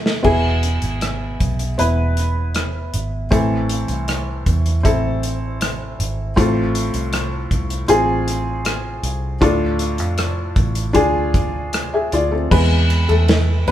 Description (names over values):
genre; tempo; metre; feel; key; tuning
pop ballad; 78 BPM; 4/4; straight; unclear; A4 = 439 Hz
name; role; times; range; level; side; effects
felt-muted upright piano; accompaniment; 0.0-13.7 s; A2 to E5; -20 LUFS; left 1 dB; none
modern studio drum kit; drums; 0.1-13.7 s; crash cymbal, hi-hat, kick drum, ride cymbal, rim click, snare drum; -21 LUFS; equal; none
vintage muted fingered electric bass; bass; 0.2-13.7 s; E1 to F2; -20 LUFS; right 1 dB; none
room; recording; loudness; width
moderate stone room reverb, RT60 1.1 s; band playing live in one room; -16 LUFS; side -12 dB against mid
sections
0.2-12.5 A section; 12.5-13.7 B section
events
break 0.0; drum fill 0.0; felt piano solo 12.5-13.7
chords
0.2 E; 3.3 Am; 6.4 F/A; 9.4 Dm; 12.5 E